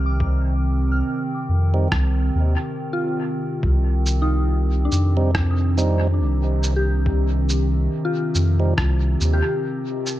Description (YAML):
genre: ambient dub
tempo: 70 BPM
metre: 4/4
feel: swing 58% on 16ths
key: C minor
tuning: A4 = 441 Hz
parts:
  - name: warbly tape-like pad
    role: sustained chords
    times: 0.0-10.2 s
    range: C3 to G5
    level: -26 LUFS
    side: equal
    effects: chorus, built-in reverb
  - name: soft synth bell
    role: arpeggios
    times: 0.0-10.2 s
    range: D4 to F6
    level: -28 LUFS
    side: left 2 dB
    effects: chorus, analog delay
  - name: soft dub sub bass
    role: bass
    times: 0.0-9.4 s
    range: C2 to F2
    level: -19 LUFS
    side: equal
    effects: none
  - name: electronic kick drum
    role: drums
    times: 0.2-9.0 s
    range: none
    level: -24 LUFS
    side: equal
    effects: studio reverb
  - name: tonewheel organ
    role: stabs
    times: 1.7-8.7 s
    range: G3 to Eb4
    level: -30 LUFS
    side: right 4 dB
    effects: stopped rotary speaker, dub echo
  - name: electronic rim click and shaker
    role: drums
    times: 1.9-10.2 s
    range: none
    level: -29 LUFS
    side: equal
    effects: studio reverb, dub echo
room: little or no reverb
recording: echo-heavy mix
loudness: -18 LUFS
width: side -14 dB against mid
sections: 0.0-10.2 A section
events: none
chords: 0.0 Cm